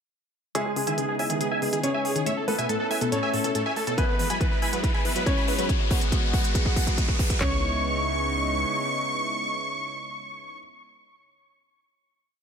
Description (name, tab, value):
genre	uplifting trance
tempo	140 BPM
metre	4/4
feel	straight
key	C# minor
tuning	A4 = 439 Hz
part	dense compressed supersaw	melody	0.5-10.6 s	G#4 to C#6	-28 LUFS	equal	sidechain pumping, low-pass filter, tape echo
part	clear grand piano	second line	0.6-10.6 s	G#3 to C#5	-32 LUFS	left 1 dB	tape echo
part	lush unison pad	sustained chords	0.6-10.6 s	C#3 to F#4	-32 LUFS	right 1 dB	chorus, vintage 12-bit sampler grit, sidechain pumping
part	tight sequenced synth	arpeggios	0.6-7.6 s	A2 to E4	-33 LUFS	left 1 dB	chorus, phaser, sidechain pumping, tape echo
part	electronic hi-hat	drums	0.6-7.4 s	none	-34 LUFS	right 1 dB	sidechain pumping on hats, high-pass filter on hats, small room ambience
part	riser	sound effects	3.4-7.4 s	none	-33 LUFS	left 3 dB	none
part	tight sequencer bass	bass	0.7-8.7 s	E1 to D#2	-34 LUFS	equal	none
part	techno drum kit	drums	4.0-7.5 s	handclaps, kick drum	-24 LUFS	equal	small room ambience
room	light reverb, digital ambience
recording	none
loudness	-23 LUFS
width	side -7 dB against mid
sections	0.6-7.4 build; 7.4-10.8 final chord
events	build-up 0.6-7.4; riser 3.4-7.4; drum fill 4.0-7.4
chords	0.6 C#m7; 2.3 A; 4.0 E; 5.7 G#m7; 7.4 C#m7